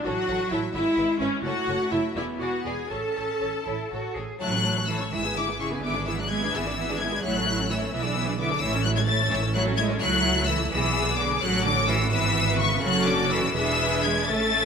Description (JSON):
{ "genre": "quick classical-period movement for string orchestra", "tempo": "85 BPM (dotted quarters)", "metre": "6/8", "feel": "rubato", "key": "A major", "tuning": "A4 = 440 Hz", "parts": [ { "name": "rich symphonic violin section", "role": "melody", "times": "0.0-14.7 s", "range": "C#5 to A6", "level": "-27 LUFS", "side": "left 5 dB", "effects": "none" }, { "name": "rich studio viola section", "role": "accompaniment", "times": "0.0-14.7 s", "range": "G#3 to B4", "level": "-28 LUFS", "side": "equal", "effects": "none" }, { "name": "clear chamber cello section", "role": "bass", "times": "0.0-14.7 s", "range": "C#3 to G#4", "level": "-30 LUFS", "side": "right 2 dB", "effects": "none" }, { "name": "clear chamber violin section", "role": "second line", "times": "0.1-14.7 s", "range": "G#4 to C#6", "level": "-32 LUFS", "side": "left 3 dB", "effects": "none" }, { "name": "rich studio double bass section", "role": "bass", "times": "0.1-14.7 s", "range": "E1 to C#2", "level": "-30 LUFS", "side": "right 3 dB", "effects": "none" } ], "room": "moderate scoring stage reverb, RT60 2.1 s", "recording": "none", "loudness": "-22 LUFS", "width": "side -6 dB against mid", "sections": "0.0-4.4 A section; 4.4-14.7 A section", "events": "none", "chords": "0.1 F#m/A; 0.7 E/G#; 1.4 F#m; 2.2 E7; 2.9 A; 5.1 E/G#; 5.8 E7/G#; 7.2 A; 7.9 E7/B; 8.6 A; 10.0 A/C#; 10.7 G#dim/B; 11.4 F#m/A; 12.1 E/G#; 12.8 F#m; 13.6 E7", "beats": "| 0.05 0.74 | 1.44 2.16 | 2.91 3.67 | 4.41 5.12 | 5.83 6.53 | 7.23 7.93 | 8.61 9.31 | 10.01 10.72 | 11.42 12.12 | 12.84 13.56 | 14.30" }